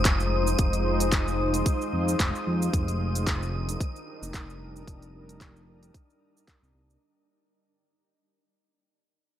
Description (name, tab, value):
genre	organic downtempo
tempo	112 BPM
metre	4/4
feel	swing 55% on 16ths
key	unclear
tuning	A4 = 440 Hz
part	granular cloud pad	sustained chords	0.0-7.0 s	G3 to C5	-30 LUFS	left 1 dB	built-in reverb, sidechain pumping
part	smooth synth bass	bass	0.0-7.0 s	F1 to F2	-29 LUFS	equal	tube saturation
part	wind-like tuned noise texture	texture	0.0-7.0 s	Eb6	-36 LUFS	equal	built-in reverb
part	deep house drum kit	drums	0.1-7.0 s	handclaps, hi-hat, shaker	-30 LUFS	equal	none
part	electronic kick drum	drums	0.1-6.6 s	none	-27 LUFS	equal	none
room	little or no reverb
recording	dry, gritty hardware recording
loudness	-24 LUFS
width	side -11 dB against mid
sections	0.0-7.0 A section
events	fade-out 0.0-7.0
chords	0.0 Fm7; 2.7 Ebmaj7/F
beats	0.05 | 0.59 1.12 1.66 2.20 | 2.73 3.27 3.80 4.34 | 4.87 5.41 5.95 6.48